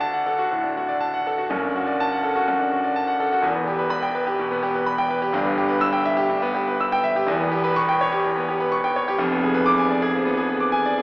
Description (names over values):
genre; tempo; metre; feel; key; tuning
classical, virtuoso piano study; 124 BPM; 4/4; rubato; unclear; A4 = 439 Hz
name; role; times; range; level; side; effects
bright grand piano; solo; 0.0-11.0 s; E1 to E6; -19 LUFS; equal; none
room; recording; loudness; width
wet recital hall reverb, RT60 1.3 s; heard from further back in the room, AM radio sound; -19 LUFS; side -23 dB against mid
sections
0.0-11.0 A section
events
none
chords
0.0 D; 1.5 D/F#; 3.4 Em; 5.3 Em/G; 7.3 C#m7b5/E; 9.2 Fdim7